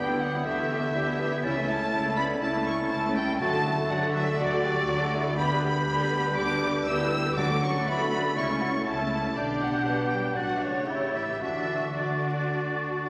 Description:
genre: quick classical-period movement for symphony orchestra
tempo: 121 BPM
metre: 4/4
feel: rubato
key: D major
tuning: A4 = 439 Hz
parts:
  - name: rich chamber violin section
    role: melody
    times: 0.0-13.1 s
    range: C#5 to E6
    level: -34 LUFS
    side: equal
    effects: none
  - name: mellow clarinet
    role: second line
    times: 0.0-13.1 s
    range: B3 to G4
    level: -38 LUFS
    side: equal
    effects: none
  - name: mellow hollow silver concert flute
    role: second line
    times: 0.0-13.1 s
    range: G6 to A6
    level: -36 LUFS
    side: equal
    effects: none
  - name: rich chamber violin section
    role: second line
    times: 0.0-13.0 s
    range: C#5 to E6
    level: -39 LUFS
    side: equal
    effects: none
  - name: mellow bassoon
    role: accompaniment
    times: 0.0-13.1 s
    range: G3 to G4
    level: -36 LUFS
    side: equal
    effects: none
  - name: rich studio viola section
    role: accompaniment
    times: 0.0-13.1 s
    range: F#3 to B4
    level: -34 LUFS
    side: equal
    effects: none
  - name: mellow French horn section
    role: sustained chords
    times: 0.0-13.0 s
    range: C#3 to E4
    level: -39 LUFS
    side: equal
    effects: none
  - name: rich studio cello section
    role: bass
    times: 0.0-13.1 s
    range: A2 to D3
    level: -40 LUFS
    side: equal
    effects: none
  - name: rich studio double bass section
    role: bass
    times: 0.0-13.1 s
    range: A1 to D2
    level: -36 LUFS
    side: equal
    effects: none
  - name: timpani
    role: percussion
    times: 7.4-8.1 s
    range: D3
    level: -38 LUFS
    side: equal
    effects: none
room: wet concert hall reverb, RT60 1.8 s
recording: vinyl crackle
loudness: -27 LUFS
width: mono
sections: 0.0-13.1 A section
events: none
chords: 0.0 Em7/D; 1.4 A/C#; 3.4 D; 5.4 G/D; 7.4 D; 8.4 A/C#; 9.4 G/B; 10.4 D/A; 10.9 A7; 11.4 D

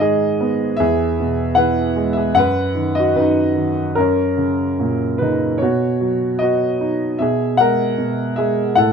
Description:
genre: classical, lyrical solo piano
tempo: 76 BPM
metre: 4/4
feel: rubato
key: B major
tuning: A4 = 440 Hz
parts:
  - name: warm concert grand piano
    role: solo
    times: 0.0-8.9 s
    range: E2 to F#5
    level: -15 LUFS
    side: equal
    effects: none
room: light reverb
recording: none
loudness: -15 LUFS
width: side -6 dB against mid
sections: 0.0-8.9 A section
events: none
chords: 0.0 G#m; 0.8 E; 2.4 B/F#; 4.0 F#; 5.6 B; 7.2 Eadd9/B

